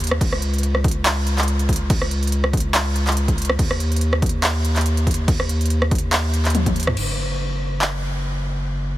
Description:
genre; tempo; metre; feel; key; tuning
future bass; 142 BPM; 4/4; swing 55% on 16ths, half-time; unclear; A4 = 441 Hz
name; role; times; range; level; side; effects
saturated sub bass; bass; 0.0-9.0 s; F#1 to D#2; -21 LUFS; equal; sidechain pumping
big-room dance drum kit; drums; 0.0-7.9 s; crash cymbal, handclaps, hi-hat, rim click, toms; -22 LUFS; equal; none
electronic kick drum; drums; 0.2-6.7 s; none; -20 LUFS; equal; none
room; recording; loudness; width
light reverb; heavily compressed radio sound; -18 LUFS; side -15 dB against mid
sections
0.0-7.0 A section; 7.0-9.0 B section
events
drop 0.0-7.0; drum fill 6.5-7.0; band accent 6.9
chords
none

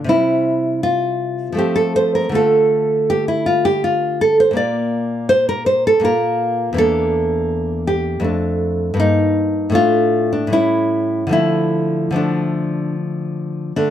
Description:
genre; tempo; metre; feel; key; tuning
classical, baroque-style dance for nylon-string guitar; 80 BPM; 3/4; rubato; D minor from 4.6 s; A4 = 440 Hz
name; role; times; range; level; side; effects
nylon-string guitar; solo; 0.0-13.9 s; E2 to D5; -15 LUFS; equal; none
room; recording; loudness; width
light reverb; dark, warm production; -15 LUFS; side -10 dB against mid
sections
0.0-13.8 A section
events
none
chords
0.1 C; 1.6 F; 2.3 Dm; 4.6 Bb; 6.8 Gm69/E; 8.3 Dm/F; 9.0 Eb/G; 9.8 Dm/A; 10.5 A7; 11.3 Dm

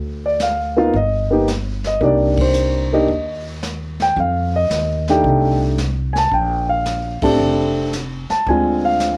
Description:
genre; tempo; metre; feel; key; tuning
jazz piano trio; 112 BPM; 4/4; swing 69% on 8ths; Bb major; A4 = 441 Hz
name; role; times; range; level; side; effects
upright bass; bass; 0.0-9.2 s; F1 to F2; -24 LUFS; equal; none
dark concert grand piano; melody; 0.3-9.2 s; Ab3 to A5; -19 LUFS; equal; cassette tape
jazz brush drum kit; drums; 0.4-9.2 s; brushed snare drum, hi-hat, kick drum, ride cymbal, snare drum; -31 LUFS; equal; cassette tape
room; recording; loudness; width
light reverb; home recording on cassette; -18 LUFS; mono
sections
0.0-9.2 A section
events
band accent 2.3, 7.1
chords
0.0 Dm; 0.9 G(#5, no3); 2.0 Cm7; 4.2 F13; 6.3 Bbmaj13; 8.5 Dm7b5

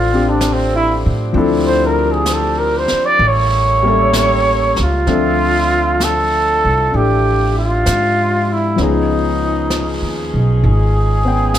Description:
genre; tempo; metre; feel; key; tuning
jazz ballad; 65 BPM; 4/4; swing 69% on 8ths; D minor; A4 = 440 Hz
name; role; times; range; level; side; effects
breathy trumpet; melody; 0.0-11.6 s; C4 to D5; -16 LUFS; right 1 dB; none
clear grand piano; accompaniment; 0.0-11.6 s; F3 to G5; -20 LUFS; left 4 dB; none
mellow saxophone section; sustained chords; 0.0-11.6 s; F3 to E5; -26 LUFS; right 1 dB; none
upright bass; bass; 0.0-11.6 s; G#1 to A2; -17 LUFS; equal; none
jazz brush drum kit; drums; 0.4-11.6 s; brushed snare drum, hi-hat, snare drum; -26 LUFS; right 1 dB; none
room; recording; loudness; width
light reverb; none; -12 LUFS; side -11 dB against mid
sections
0.0-5.1 A section; 5.1-11.6 B section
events
trumpet solo 0.0-5.1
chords
0.0 Dm9; 3.2 A7b9; 5.1 Dm9; 8.8 C#9

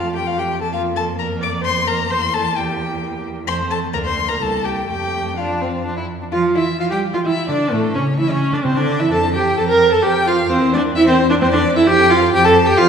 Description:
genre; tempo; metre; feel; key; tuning
quick classical-period movement for string quartet; 130 BPM; 3/4; straight; F major, D minor from 6.3 s; A4 = 440 Hz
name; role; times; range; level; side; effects
dark violin; melody; 0.0-12.9 s; A3 to D6; -24 LUFS; left 6 dB; none
rich violin; second line; 0.0-12.9 s; A3 to Bb5; -23 LUFS; left 3 dB; none
warm viola; accompaniment; 0.0-12.9 s; A3 to D5; -17 LUFS; right 2 dB; none
rich cello; bass; 0.0-12.9 s; C2 to G3; -23 LUFS; right 2 dB; none
room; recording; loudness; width
wet recital hall reverb, RT60 1.6 s; heard from further back in the room; -15 LUFS; side -7 dB against mid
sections
0.0-6.3 A section; 6.3-12.9 B section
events
none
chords
0.0 F; 0.7 Fsus4; 2.1 Edim; 3.5 F; 3.9 Bb/D; 4.4 C5; 4.9 F; 6.3 Dm; 7.7 A; 8.7 Cadd9; 9.1 F; 10.5 C7/E; 11.4 F

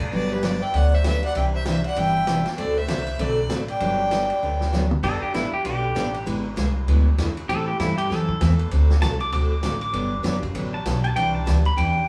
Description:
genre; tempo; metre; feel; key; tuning
country, western swing; 196 BPM; 4/4; swing 60% on 8ths; G major; A4 = 439 Hz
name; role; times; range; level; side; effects
upright bass; bass; 0.0-12.1 s; F#1 to A2; -25 LUFS; equal; none
vintage drum kit; drums; 0.0-11.9 s; crash cymbal, hi-hat, kick drum, ride cymbal, snare drum, toms; -34 LUFS; equal; none
clear fiddle; melody; 0.1-4.7 s; B4 to G5; -29 LUFS; equal; none
breathy clarinet; second line; 0.1-4.7 s; G4 to E5; -31 LUFS; equal; none
picked steel-string acoustic guitar; accompaniment; 0.1-12.0 s; C3 to A4; -29 LUFS; equal; none
pedal steel guitar; second line; 5.0-12.1 s; E4 to D6; -28 LUFS; equal; none
room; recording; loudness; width
wet studio reverb, RT60 0.6 s; band playing live in one room, studio ambience; -22 LUFS; mono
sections
0.0-5.0 A section; 5.0-12.1 B section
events
drum fill 4.4-5.0; pedal steel guitar solo 5.0-12.1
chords
0.1 Gmaj7; 1.4 Cadd9; 2.6 D7; 3.8 Gmaj7; 5.0 Gadd9; 6.3 E7/G#; 7.5 Am; 8.7 D7; 9.9 Gmaj7; 11.2 Cadd9

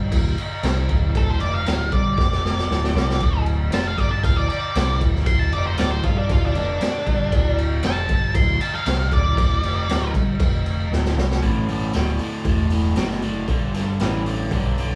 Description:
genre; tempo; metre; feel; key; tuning
blues rock power trio and southern rock; 117 BPM; 4/4; straight; unclear; A4 = 438 Hz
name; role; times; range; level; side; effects
growling picked electric bass; bass; 0.0-15.0 s; D1 to C2; -25 LUFS; equal; overdrive
raw garage drum kit; drums; 0.1-14.9 s; crash cymbal, hi-hat, kick drum, snare drum; -24 LUFS; equal; none
octave-fuzz lead guitar; melody; 1.2-10.1 s; D4 to C6; -27 LUFS; equal; distortion
overdriven electric guitar; riff; 11.4-15.0 s; D2 to E3; -28 LUFS; equal; none
room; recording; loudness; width
light reverb; band playing live in one room, small room ambience; -21 LUFS; mono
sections
0.0-11.4 A section; 11.4-15.0 B section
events
lead electric guitar solo 0.0-11.4; drum fill 2.2-3.2, 10.9-11.4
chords
0.0 N.C.; 11.4 D; 13.5 G

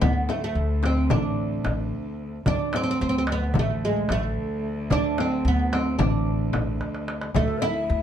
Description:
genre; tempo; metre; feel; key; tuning
Turkish makam ensemble; 220 BPM (eighths); 9/8; straight; D makam nikriz; A4 = 440 Hz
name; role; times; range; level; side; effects
oud; melody; 0.0-8.0 s; G#3 to E4; -26 LUFS; right 3 dB; slapback echo
upright bass; bass; 0.0-8.0 s; A1 to D2; -26 LUFS; left 1 dB; none
clear cello; drone; 0.0-8.0 s; D2; -33 LUFS; left 2 dB; none
darbuka; percussion; 0.0-7.5 s; none; -29 LUFS; right 2 dB; none
frame drum; percussion; 0.0-7.8 s; none; -30 LUFS; left 6 dB; none
breathy ney; second line; 7.4-8.0 s; A4 to E5; -28 LUFS; left 4 dB; none
room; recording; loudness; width
moderate studio reverb, RT60 0.5 s; dark, warm production; -22 LUFS; side -9 dB against mid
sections
0.0-8.0 A section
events
drum fill 6.8-7.4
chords
none

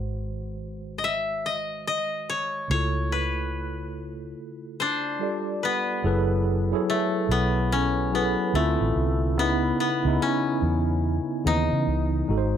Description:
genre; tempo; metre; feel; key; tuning
R&B; 72 BPM; 4/4; swing 64% on 16ths; C# minor; A4 = 440 Hz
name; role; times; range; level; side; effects
koto; melody; 0.0-12.6 s; A3 to F#5; -27 LUFS; left 3 dB; slapback echo
tine electric piano; accompaniment; 0.0-12.6 s; C#3 to D5; -28 LUFS; right 1 dB; medium stereo tremolo
vintage muted fingered electric bass; bass; 0.0-12.6 s; F#1 to C#3; -26 LUFS; right 1 dB; none
room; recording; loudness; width
light reverb; none; -23 LUFS; side -9 dB against mid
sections
0.0-6.0 A section; 6.0-12.6 B section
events
none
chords
0.0 G#7; 2.7 C#7alt; 5.2 G9sus4; 6.0 F#m11; 8.5 Dm9; 9.4 C#m9

